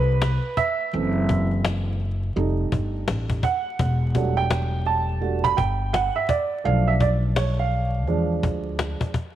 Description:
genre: hip hop, jazz-hop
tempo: 84 BPM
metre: 4/4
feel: swing 62% on 16ths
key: E minor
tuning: A4 = 440 Hz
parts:
  - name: dark baby grand piano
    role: accompaniment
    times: 0.0-9.1 s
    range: E3 to B5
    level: -24 LUFS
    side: right 6 dB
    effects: none
  - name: upright bass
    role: bass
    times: 0.0-8.9 s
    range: E1 to E2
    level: -23 LUFS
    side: left 1 dB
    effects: none
  - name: cajon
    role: drums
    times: 0.2-9.4 s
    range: none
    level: -27 LUFS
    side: left 3 dB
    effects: none
room: light reverb, small room ambience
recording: 1960s-style stereo, vinyl crackle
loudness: -21 LUFS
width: side -12 dB against mid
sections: 0.0-9.4 A section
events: grand piano solo 0.0-9.4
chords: 0.0 Amadd9 (rootless); 0.9 F#m7b5; 2.4 F9; 3.8 Em11; 6.6 Bm7b5; 8.1 E7b9

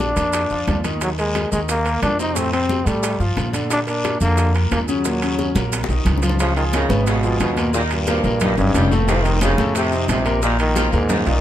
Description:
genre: latin, salsa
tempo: 179 BPM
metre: 4/4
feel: straight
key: Eb harmonic minor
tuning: A4 = 440 Hz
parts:
  - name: growling trombone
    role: melody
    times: 0.0-11.4 s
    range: G2 to Eb4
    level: -22 LUFS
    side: equal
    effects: none
  - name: bright upright piano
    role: accompaniment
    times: 0.0-11.4 s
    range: A2 to Cb5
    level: -24 LUFS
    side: left 1 dB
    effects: none
  - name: upright bass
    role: bass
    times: 0.0-11.4 s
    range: F1 to Bb2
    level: -21 LUFS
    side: equal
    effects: none
  - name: bongos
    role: percussion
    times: 0.0-11.4 s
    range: none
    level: -30 LUFS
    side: left 4 dB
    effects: none
  - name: congas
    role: percussion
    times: 0.0-11.4 s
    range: none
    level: -28 LUFS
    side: equal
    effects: none
  - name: guiro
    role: percussion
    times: 0.2-11.4 s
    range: none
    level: -33 LUFS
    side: left 3 dB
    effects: none
  - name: maracas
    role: percussion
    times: 0.2-11.4 s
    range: none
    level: -33 LUFS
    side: right 8 dB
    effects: none
  - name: timbales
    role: percussion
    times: 0.2-11.3 s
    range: none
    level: -29 LUFS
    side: right 4 dB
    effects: none
  - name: clear saxophone section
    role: second line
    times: 6.4-11.3 s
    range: C3 to G3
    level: -26 LUFS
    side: right 1 dB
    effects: none
room: light reverb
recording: close, detailed microphones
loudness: -16 LUFS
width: side -12 dB against mid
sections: 0.0-6.4 A section; 6.4-11.4 B section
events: drum fill 5.6-6.4, 11.1-11.4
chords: 0.0 Bb; 1.0 Eb5; 2.4 F; 3.7 Bb; 5.0 Ebm7; 6.4 Db7; 7.7 Eb7; 9.1 F7; 10.4 Bb7sus4

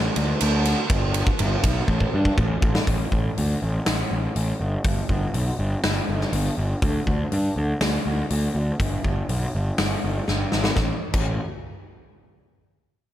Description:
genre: hard rock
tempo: 121 BPM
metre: 4/4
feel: straight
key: unclear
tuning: A4 = 440 Hz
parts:
  - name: fuzz picked electric bass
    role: bass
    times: 0.0-11.4 s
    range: G1 to G2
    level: -23 LUFS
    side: equal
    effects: overdrive
  - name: big rock drum kit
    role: drums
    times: 0.2-11.3 s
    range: crash cymbal, hi-hat, kick drum, ride cymbal, snare drum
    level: -24 LUFS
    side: equal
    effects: none
room: little or no reverb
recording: none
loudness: -21 LUFS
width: side -12 dB against mid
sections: 0.0-2.9 A section; 2.9-10.8 B section; 10.8-12.8 C section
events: drum fill 1.9-2.9, 10.3-10.8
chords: none

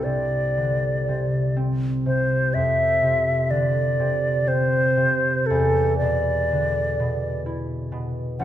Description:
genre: classical, impressionist duo for flute and harp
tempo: 56-65 BPM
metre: 3/4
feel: rubato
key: unclear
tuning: A4 = 440 Hz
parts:
  - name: silver concert flute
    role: melody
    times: 0.0-8.4 s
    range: A4 to F#5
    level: -22 LUFS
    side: equal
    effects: none
  - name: concert harp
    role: accompaniment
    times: 0.0-8.4 s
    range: A1 to E4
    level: -23 LUFS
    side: equal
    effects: none
room: wet recital hall reverb, RT60 1.8 s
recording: none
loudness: -20 LUFS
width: side -11 dB against mid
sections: 0.0-8.4 A section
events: none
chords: 0.0 D5/C; 2.5 F5; 5.5 E5

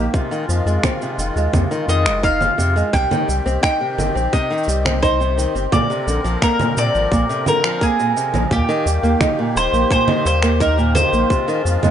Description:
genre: folktronica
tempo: 86 BPM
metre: 4/4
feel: straight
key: unclear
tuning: A4 = 440 Hz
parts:
  - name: musette accordion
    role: sustained chords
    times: 0.0-11.9 s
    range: D3 to Bb4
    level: -26 LUFS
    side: left 1 dB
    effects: none
  - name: nylon-string guitar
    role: arpeggios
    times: 0.0-11.9 s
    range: Bb2 to Eb4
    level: -21 LUFS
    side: right 2 dB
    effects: tape echo
  - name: warm sub bass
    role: bass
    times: 0.0-11.9 s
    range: Eb1 to Bb2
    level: -20 LUFS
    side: equal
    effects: tube saturation
  - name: electronic kick drum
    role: drums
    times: 0.1-11.4 s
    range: none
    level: -20 LUFS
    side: equal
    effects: none
  - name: electronic shaker, finger snaps and congas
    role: drums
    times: 0.1-11.9 s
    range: none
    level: -23 LUFS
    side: right 2 dB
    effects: none
  - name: mandolin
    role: melody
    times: 1.9-11.9 s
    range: G4 to G5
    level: -20 LUFS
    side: left 1 dB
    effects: tape echo
room: light reverb, small room ambience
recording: nothing above 10.8 kHz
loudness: -15 LUFS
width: side -9 dB against mid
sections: 0.0-11.9 A section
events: none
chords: 0.1 Fm7; 2.9 Cm; 5.7 Bbadd9; 8.5 Eb; 11.3 Fm7

